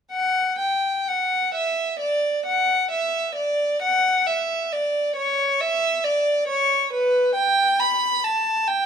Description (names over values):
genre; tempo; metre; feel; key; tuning
classical, baroque-style suite movement for unaccompanied violin; 63-69 BPM; 4/4; rubato; D major; A4 = 441 Hz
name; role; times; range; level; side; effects
rich violin; solo; 0.1-8.9 s; B4 to B5; -19 LUFS; equal; none
room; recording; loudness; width
light reverb; close, detailed microphones; -19 LUFS; side -7 dB against mid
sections
0.1-8.9 A section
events
none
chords
none